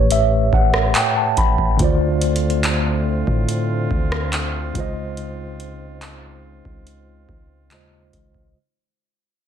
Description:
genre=contemporary R&B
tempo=71 BPM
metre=4/4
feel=straight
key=unclear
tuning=A4 = 442 Hz
part: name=mellow tine electric piano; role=accompaniment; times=0.0-8.6 s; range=A2 to B5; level=-20 LUFS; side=equal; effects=medium stereo tremolo
part: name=long sustained 808-style bass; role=bass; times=0.0-8.5 s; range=A1 to A2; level=-24 LUFS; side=equal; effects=none
part: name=booming analog drum machine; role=drums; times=0.1-8.5 s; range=handclaps, hi-hat, kick drum, rim click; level=-20 LUFS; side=equal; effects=vintage 12-bit sampler grit
part: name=mellow brass ensemble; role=sustained chords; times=1.8-8.5 s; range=Db3 to F4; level=-30 LUFS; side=equal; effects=stereo widening
room=little or no reverb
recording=none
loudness=-16 LUFS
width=side -9 dB against mid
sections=0.0-8.6 A section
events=fade-out 0.0-8.6; tine electric piano fill 0.0-1.8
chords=0.0 A7; 1.8 Dm7; 4.8 Dbmaj9

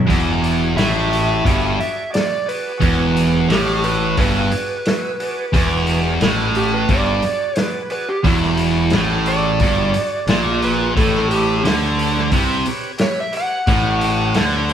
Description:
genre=blues rock power trio and southern rock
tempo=88 BPM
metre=4/4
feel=straight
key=E mixolydian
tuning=A4 = 440 Hz
part: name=sludgy distorted guitar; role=riff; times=0.0-14.7 s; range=E2 to D3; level=-18 LUFS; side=right 1 dB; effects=overdrive
part: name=fuzz picked electric bass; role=bass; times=0.0-14.7 s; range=E1 to D2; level=-23 LUFS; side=left 1 dB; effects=overdrive
part: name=overdriven tonewheel organ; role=sustained chords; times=0.1-14.7 s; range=F#4 to E5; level=-29 LUFS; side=right 2 dB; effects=slow rotary speaker
part: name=vintage drum kit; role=drums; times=0.1-14.7 s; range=hi-hat, kick drum, snare drum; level=-22 LUFS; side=equal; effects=none
part: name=overdriven slide guitar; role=melody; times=0.8-14.7 s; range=E4 to F#5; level=-22 LUFS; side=right 1 dB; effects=none
room=moderate large studio reverb, RT60 1.1 s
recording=band playing live in one room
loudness=-15 LUFS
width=side -9 dB against mid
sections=0.1-14.7 A section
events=electric slide guitar solo 0.1-14.7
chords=0.1 E7; 11.0 A7

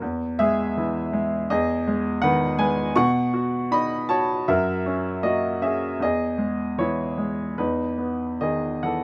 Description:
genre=classical, lyrical solo piano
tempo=70-84 BPM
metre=4/4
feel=rubato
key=unclear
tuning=A4 = 440 Hz
part: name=clear baby grand piano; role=solo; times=0.0-9.0 s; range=E2 to C#6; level=-24 LUFS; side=equal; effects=none
room=light reverb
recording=close, detailed microphones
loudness=-24 LUFS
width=mono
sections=0.0-9.0 A section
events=none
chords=0.0 E; 1.5 Emaj7; 3.0 B; 4.5 F#7; 6.0 C#m/E; 7.6 Emaj7

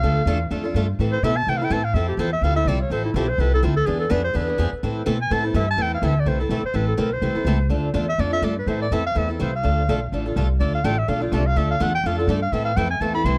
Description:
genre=acoustic string swing (jazz manouche)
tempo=250 BPM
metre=4/4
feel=swing 56% on 8ths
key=A minor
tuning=A4 = 435 Hz
part: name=breathy clarinet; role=melody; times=0.0-13.4 s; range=E4 to C6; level=-27 LUFS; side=equal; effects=tape echo
part: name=picked swing-style acoustic guitar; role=accompaniment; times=0.0-13.4 s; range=D3 to A4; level=-28 LUFS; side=equal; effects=none
part: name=upright bass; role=bass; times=0.0-13.4 s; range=A1 to C3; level=-25 LUFS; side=equal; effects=none
room=studio reverb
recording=dry, close 1970s-style studio recording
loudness=-22 LUFS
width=mono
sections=0.0-5.8 A section; 5.8-13.4 A section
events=clarinet solo 0.0-13.4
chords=0.0 Dm; 1.0 Am; 1.9 Fmaj7; 3.9 E7b9; 4.8 Am; 7.7 Dm; 8.7 Am; 9.6 Dm; 12.5 Am

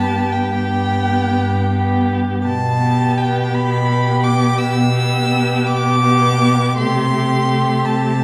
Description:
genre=classical, slow romantic movement for string quartet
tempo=56 BPM (dotted quarters)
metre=12/8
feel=rubato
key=G major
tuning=A4 = 438 Hz
part: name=warm violin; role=melody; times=0.0-8.2 s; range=G5 to E6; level=-23 LUFS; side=equal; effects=none
part: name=dark violin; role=second line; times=0.0-8.2 s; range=G4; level=-25 LUFS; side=equal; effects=none
part: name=rich viola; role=accompaniment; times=0.0-8.2 s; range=A3 to B3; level=-24 LUFS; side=equal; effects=none
part: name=warm cello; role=bass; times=0.0-8.2 s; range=G2 to C3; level=-20 LUFS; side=equal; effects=none
room=wet scoring stage reverb, RT60 1.7 s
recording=recorded in a church or concert hall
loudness=-17 LUFS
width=mono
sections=0.0-8.2 A section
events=none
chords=0.0 G; 2.5 G/B; 6.8 Am7/C

